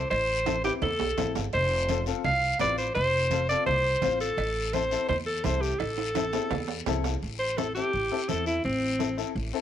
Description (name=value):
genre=latin, cumbia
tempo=169 BPM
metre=4/4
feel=straight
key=A minor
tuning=A4 = 440 Hz
part: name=breathy alto saxophone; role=melody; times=0.0-9.3 s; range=C4 to F5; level=-27 LUFS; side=equal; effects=none
part: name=upright bass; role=bass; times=0.0-9.5 s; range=F1 to E2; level=-32 LUFS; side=equal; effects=none
part: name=congas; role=percussion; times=0.1-9.5 s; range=none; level=-38 LUFS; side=right 8 dB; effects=none
part: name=cowbell and timbales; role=percussion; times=0.1-7.1 s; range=none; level=-36 LUFS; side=right 12 dB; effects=none
part: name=guiro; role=percussion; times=0.1-9.6 s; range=none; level=-40 LUFS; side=left 10 dB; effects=none
part: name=warm upright piano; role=accompaniment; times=0.5-9.6 s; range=C4 to C5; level=-33 LUFS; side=left 11 dB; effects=none
room=light reverb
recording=1960s-style stereo with parts hard left and right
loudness=-25 LUFS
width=side -10 dB against mid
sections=0.0-7.2 A section; 7.2-9.6 B section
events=drum fill 0.5-1.5, 5.8-7.2; alto saxophone solo 7.2-9.6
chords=0.0 Am; 1.5 F; 4.4 Am